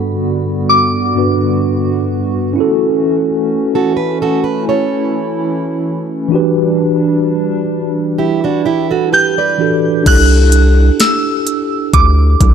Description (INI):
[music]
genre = contemporary R&B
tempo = 64 BPM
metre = 4/4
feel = swing 54% on 16ths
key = unclear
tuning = A4 = 440 Hz
[part]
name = soft synth bell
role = melody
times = 0.0-2.1, 9.1-12.5 s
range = B5 to G6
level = -15 LUFS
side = equal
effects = chorus, phaser, ping-pong delay
[part]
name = mellow tine electric piano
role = accompaniment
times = 0.0-12.5 s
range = G2 to B4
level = -15 LUFS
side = equal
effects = medium stereo tremolo
[part]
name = hollow soft pad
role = sustained chords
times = 0.0-10.0 s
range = D3 to F#4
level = -19 LUFS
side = right 1 dB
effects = chorus, tremolo, sidechain pumping
[part]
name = fingerpicked plugged-in steel-string acoustic guitar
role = arpeggios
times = 3.8-10.0 s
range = D4 to D5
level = -17 LUFS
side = right 7 dB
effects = ping-pong delay
[part]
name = round analog bass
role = bass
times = 10.1-12.5 s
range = C2 to D2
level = -9 LUFS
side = equal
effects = none
[part]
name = trap drum kit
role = drums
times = 10.1-12.5 s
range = crash cymbal, hi-hat, kick drum, snare drum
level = -13 LUFS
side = equal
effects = overdrive
[sound]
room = light reverb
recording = none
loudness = -11 LUFS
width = side -7 dB against mid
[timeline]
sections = 0.0-10.1 A section; 10.1-12.5 B section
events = none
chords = 0.0 Gmaj7; 2.6 F#m7; 6.3 Em9; 10.1 C69